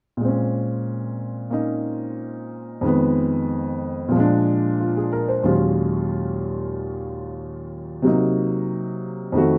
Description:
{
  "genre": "solo jazz",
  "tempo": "92 BPM",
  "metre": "4/4",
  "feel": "swing 68% on 8ths",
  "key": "Bb minor",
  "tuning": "A4 = 440 Hz",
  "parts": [
    { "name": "warm upright piano", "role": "solo", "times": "0.2-9.6 s", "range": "Eb2 to C5", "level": "-23 LUFS", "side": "equal", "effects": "none" }
  ],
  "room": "moderate studio reverb, RT60 0.8 s",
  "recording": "none",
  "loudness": "-23 LUFS",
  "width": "mono",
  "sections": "0.2-9.6 A section",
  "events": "none",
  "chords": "0.2 Bbm9; 2.8 Fm7b5; 4.1 Bb7; 5.4 Ebm11; 8.1 Cm7b5",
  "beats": "| 0.22 0.87 1.52 2.18 | 2.83 3.49 4.14 4.79 | 5.45 6.10 6.75 7.40 | 8.06 8.71 9.36"
}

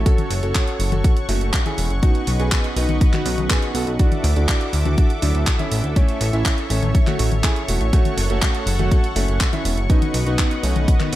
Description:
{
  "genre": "italo disco",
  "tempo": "122 BPM",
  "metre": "4/4",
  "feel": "straight",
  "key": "F# minor",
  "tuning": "A4 = 439 Hz",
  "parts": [
    { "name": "lush unison pad", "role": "sustained chords", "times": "0.0-11.2 s", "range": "A4 to D6", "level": "-29 LUFS", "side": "equal", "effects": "chorus" },
    { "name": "mellow tine electric piano", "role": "stabs", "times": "0.0-11.2 s", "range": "B3 to E5", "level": "-30 LUFS", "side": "right 2 dB", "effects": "medium stereo tremolo" },
    { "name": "chorused synth bass", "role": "bass", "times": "0.0-11.2 s", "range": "E1 to D2", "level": "-20 LUFS", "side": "equal", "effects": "none" },
    { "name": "clear baby grand piano", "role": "melody", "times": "0.1-11.2 s", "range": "D#3 to A4", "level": "-27 LUFS", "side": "right 1 dB", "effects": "digital delay" },
    { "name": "electronic kick drum", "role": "drums", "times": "0.1-11.0 s", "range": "none", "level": "-17 LUFS", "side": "equal", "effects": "none" },
    { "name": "house drum kit", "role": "drums", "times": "0.1-11.2 s", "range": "handclaps, hi-hat, toms", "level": "-25 LUFS", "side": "left 2 dB", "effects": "gated reverb" }
  ],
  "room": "little or no reverb",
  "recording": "none",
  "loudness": "-17 LUFS",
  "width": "side -14 dB against mid",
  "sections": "0.0-11.2 A section",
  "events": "none",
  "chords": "0.1 F#m; 2.0 Badd9; 4.0 Dadd9; 6.0 A; 7.9 F#m; 9.9 Badd9",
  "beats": "| 0.06 0.55 1.04 1.53 | 2.03 2.52 3.01 3.50 | 3.99 4.49 4.98 5.47 | 5.96 6.45 6.95 7.44 | 7.93 8.42 8.91 9.40 | 9.90 10.39 10.88"
}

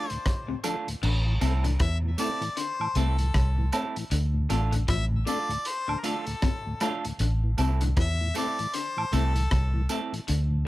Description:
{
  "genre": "roots reggae",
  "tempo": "78 BPM",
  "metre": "4/4",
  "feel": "swing 59% on 16ths",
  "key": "unclear",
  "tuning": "A4 = 440 Hz",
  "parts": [
    { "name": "warm harmonica", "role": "melody", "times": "0.0-9.9 s", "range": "A4 to E5", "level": "-32 LUFS", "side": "left 2 dB", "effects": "dub echo" },
    { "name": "semi-hollow electric guitar", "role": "accompaniment", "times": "0.0-10.1 s", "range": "A3 to A4", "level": "-34 LUFS", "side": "right 4 dB", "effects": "dub echo" },
    { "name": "mellow tonewheel organ", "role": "accompaniment", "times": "0.1-10.7 s", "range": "D2 to F4", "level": "-34 LUFS", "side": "left 1 dB", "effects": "chorus vibrato, slow rotary speaker" },
    { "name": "crunchy breakbeat drum kit", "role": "drums", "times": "0.1-10.5 s", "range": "crash cymbal, hi-hat, kick drum, rim click", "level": "-31 LUFS", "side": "equal", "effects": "none" },
    { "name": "electric guitar through a small old amp", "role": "arpeggios", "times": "0.5-10.4 s", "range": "A2 to F3", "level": "-35 LUFS", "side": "left 10 dB", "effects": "none" },
    { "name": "tambourine and woodblock", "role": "percussion", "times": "0.6-10.1 s", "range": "none", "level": "-34 LUFS", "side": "right 3 dB", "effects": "none" },
    { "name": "vintage muted fingered electric bass", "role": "bass", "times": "1.0-10.6 s", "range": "A1 to E2", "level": "-24 LUFS", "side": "equal", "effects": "none" }
  ],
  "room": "little or no reverb",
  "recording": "none",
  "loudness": "-24 LUFS",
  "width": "side -17 dB against mid",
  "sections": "0.0-1.0 A section; 1.0-10.7 B section",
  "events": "none",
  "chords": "0.0 Dm; 1.0 Am; 4.1 Dm; 7.2 Am",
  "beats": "0.26 | 1.03 1.80 2.57 3.34 | 4.11 4.88 5.66 6.43 | 7.20 7.97 8.74 9.51 | 10.28"
}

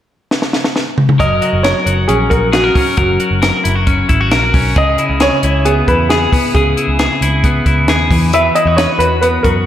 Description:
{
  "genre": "jangly indie pop",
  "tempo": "135 BPM",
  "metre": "4/4",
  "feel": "straight",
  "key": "unclear",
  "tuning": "A4 = 440 Hz",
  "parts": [
    { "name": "compact cocktail drum kit", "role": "drums", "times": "0.3-9.5 s", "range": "hi-hat, kick drum, snare drum, toms", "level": "-16 LUFS", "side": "equal", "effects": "none" },
    { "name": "warm upright piano", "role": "melody", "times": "1.2-9.5 s", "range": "F#4 to E5", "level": "-15 LUFS", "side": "right 1 dB", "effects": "tape echo" },
    { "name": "clean electric guitar", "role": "arpeggios", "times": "1.2-9.7 s", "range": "C#3 to B4", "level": "-15 LUFS", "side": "left 2 dB", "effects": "tape echo" },
    { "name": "vintage muted picked electric bass", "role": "bass", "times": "1.2-9.7 s", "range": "F#1 to F#2", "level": "-16 LUFS", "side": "equal", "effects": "none" }
  ],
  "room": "wet lush hall reverb, RT60 1.6 s, small room ambience",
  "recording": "dreamy mix soaked in reverb",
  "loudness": "-10 LUFS",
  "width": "side -11 dB against mid",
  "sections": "0.0-1.2 A section; 1.2-9.7 B section",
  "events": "drum fill 0.3-1.2",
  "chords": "0.0 N.C.; 1.2 F#; 4.8 C#m7; 8.1 Esus2",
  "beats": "0.31 0.75 | 1.20 1.64 2.09 2.54 | 2.98 3.43 3.87 4.32 | 4.76 5.21 5.65 6.10 | 6.55 6.99 7.44 7.88 | 8.33 8.78 9.22"
}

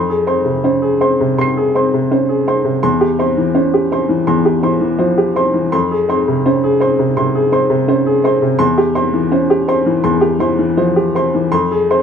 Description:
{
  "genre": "neoclassical minimalist piano",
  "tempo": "83 BPM",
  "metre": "4/4",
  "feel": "rubato",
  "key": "F harmonic minor",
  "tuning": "A4 = 445 Hz",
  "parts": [
    { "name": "clear upright piano", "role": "solo", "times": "0.0-12.0 s", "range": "E2 to C7", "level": "-12 LUFS", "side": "equal", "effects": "none" }
  ],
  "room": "light reverb",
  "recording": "none",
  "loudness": "-12 LUFS",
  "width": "side -7 dB against mid",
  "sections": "0.0-12.0 A section",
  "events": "none",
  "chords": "0.0 Fm; 2.8 C/E; 5.7 Fm; 8.6 C/E; 11.5 Fm",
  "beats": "0.65 1.39 2.11 | 2.83 3.55 4.28 5.01 | 5.74 6.46 7.17 7.89 | 8.60 9.32 10.04 10.77 | 11.51"
}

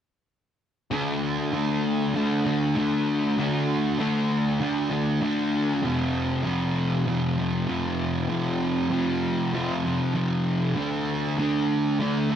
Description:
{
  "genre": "rock",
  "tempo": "98 BPM",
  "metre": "4/4",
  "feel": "straight",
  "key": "unclear",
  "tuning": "A4 = 440 Hz",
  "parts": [
    { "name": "fuzz guitar", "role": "solo", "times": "0.9-12.4 s", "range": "F2 to D4", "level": "-23 LUFS", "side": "equal", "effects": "distortion, lush chorus" }
  ],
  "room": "light reverb",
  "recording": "dark, warm production",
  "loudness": "-23 LUFS",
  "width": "side -9 dB against mid",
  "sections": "0.9-12.4 A section",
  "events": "none",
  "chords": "0.9 D5; 5.8 F5; 10.8 D5",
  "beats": "| 0.92 1.54 2.15 2.77 | 3.38 4.00 4.61 5.23 | 5.84 6.46 7.07 7.69 | 8.30 8.92 9.53 10.15 | 10.77 11.38 12.00"
}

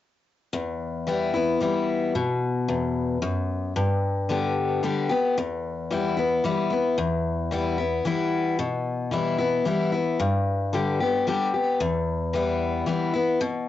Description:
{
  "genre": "country",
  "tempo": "112 BPM",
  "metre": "3/4",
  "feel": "straight",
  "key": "E minor",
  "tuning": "A4 = 440 Hz",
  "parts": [
    { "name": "picked steel-string acoustic guitar", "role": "solo", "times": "0.5-13.7 s", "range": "E2 to G4", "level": "-22 LUFS", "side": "left 2 dB", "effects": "none" }
  ],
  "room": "wet studio ambience, RT60 0.5 s",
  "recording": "home recording on cassette, nothing above 7.7 kHz",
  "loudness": "-23 LUFS",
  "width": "side -12 dB against mid",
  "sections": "0.5-7.0 A section; 7.0-13.7 B section",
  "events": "none",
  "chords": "0.5 Em; 3.8 G; 5.4 Em; 10.2 G; 11.8 Em",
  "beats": "| 0.54 1.07 1.61 | 2.15 2.69 3.22 | 3.76 4.30 4.83 | 5.37 5.91 6.44 | 6.98 7.51 8.05 | 8.58 9.12 9.66 | 10.19 10.73 11.26 | 11.80 12.33 12.87 | 13.40"
}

